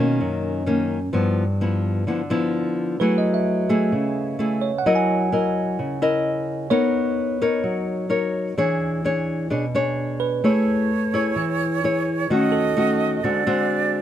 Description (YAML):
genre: bossa nova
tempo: 129 BPM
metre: 4/4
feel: straight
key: unclear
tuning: A4 = 440 Hz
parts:
  - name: nylon-string guitar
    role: accompaniment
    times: 0.0-14.0 s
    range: F#2 to D#5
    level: -20 LUFS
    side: left 1 dB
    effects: none
  - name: bell-like tine electric piano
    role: accompaniment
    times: 3.0-13.4 s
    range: A4 to G#5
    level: -27 LUFS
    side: right 8 dB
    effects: none
  - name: breathy jazz flute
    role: second line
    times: 10.5-14.0 s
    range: C#5 to D#5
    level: -24 LUFS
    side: right 7 dB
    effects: none
room: light reverb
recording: none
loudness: -19 LUFS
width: side -11 dB against mid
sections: 0.0-14.0 A section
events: none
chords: 0.0 Bmaj9; 1.1 G6; 3.0 F#m9; 4.9 F#13; 6.7 Bmaj9; 8.6 E6; 10.4 Amaj7; 12.3 D#m7b5; 13.2 D7#11